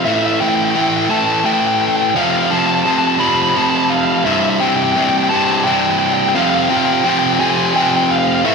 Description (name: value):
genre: rock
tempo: 57 BPM (dotted quarters)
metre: 6/8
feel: straight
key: unclear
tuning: A4 = 439 Hz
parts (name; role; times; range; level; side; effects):
- bluesy overdriven lead guitar; melody; 0.0-8.5 s; E5 to B5; -16 LUFS; equal; distortion, ping-pong delay
- distorted electric guitar; riff; 0.0-8.5 s; C2 to A3; -15 LUFS; equal; overdrive
room: wet lush hall reverb, RT60 2.6 s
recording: dreamy mix soaked in reverb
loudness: -12 LUFS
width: side -4 dB against mid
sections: 0.0-8.5 A section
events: build-up 0.0-8.5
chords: 0.1 A5; 2.2 F; 4.3 C5; 6.4 Fsus2